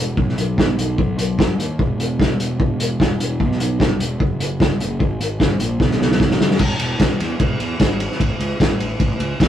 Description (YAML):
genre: indie rock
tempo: 150 BPM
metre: 4/4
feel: straight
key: E major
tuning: A4 = 440 Hz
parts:
  - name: fuzz picked electric bass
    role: bass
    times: 0.0-9.5 s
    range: E1 to F#2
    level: -22 LUFS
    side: equal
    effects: overdrive
  - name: vintage drum kit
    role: drums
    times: 0.2-9.5 s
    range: crash cymbal, hi-hat, kick drum, ride cymbal, snare drum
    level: -17 LUFS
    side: equal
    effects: none
room: little or no reverb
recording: rough rehearsal-room recording, warm saturation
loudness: -16 LUFS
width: side -10 dB against mid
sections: 0.0-6.6 A section; 6.6-9.5 B section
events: drum fill 5.8-6.6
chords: none